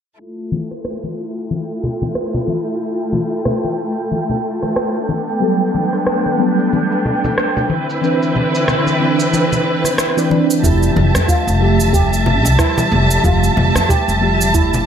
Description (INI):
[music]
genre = sunset chillout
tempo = 92 BPM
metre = 4/4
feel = swing 58% on 16ths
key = F lydian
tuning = A4 = 442 Hz
[part]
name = rich studio string section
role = sustained chords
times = 0.2-14.9 s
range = D3 to A5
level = -19 LUFS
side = equal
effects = none
[part]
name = electronic cabasa and rim click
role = drums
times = 0.2-14.8 s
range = none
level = -22 LUFS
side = right 1 dB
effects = none
[part]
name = twinkling granular texture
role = texture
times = 1.9-10.7 s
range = G5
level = -27 LUFS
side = right 5 dB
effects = built-in reverb
[part]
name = congas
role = percussion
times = 0.5-14.8 s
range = none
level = -22 LUFS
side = left 2 dB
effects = none
[part]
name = mellow FM electric piano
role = accompaniment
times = 5.4-14.9 s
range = E3 to E5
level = -18 LUFS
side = moving between left 4 dB and right 3 dB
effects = chorus, phaser, auto-pan, tape echo
[part]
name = steel pan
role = arpeggios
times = 10.6-14.9 s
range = E4 to G4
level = -22 LUFS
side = right 4 dB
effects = vintage 12-bit sampler grit, low-pass filter, tape echo
[part]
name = upright bass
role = bass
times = 10.6-14.8 s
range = F1 to F2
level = -16 LUFS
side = equal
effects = none
[part]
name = electronic kick drum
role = drums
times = 10.6-14.7 s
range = none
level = -17 LUFS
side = equal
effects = overdrive
[sound]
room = light reverb, small room ambience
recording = low-pass filter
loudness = -14 LUFS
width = side -8 dB against mid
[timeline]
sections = 0.2-10.6 A section; 10.6-14.9 B section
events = filter sweep 0.2-10.6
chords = 0.2 Fmaj9; 5.1 Gmaj9; 7.7 Cmaj9; 10.6 Fmaj9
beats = | 0.20 0.85 1.50 2.16 | 2.81 3.46 4.11 4.76 | 5.42 6.07 6.72 7.37 | 8.03 8.68 9.33 9.98 | 10.63 11.29 11.94 12.59 | 13.24 13.90 14.55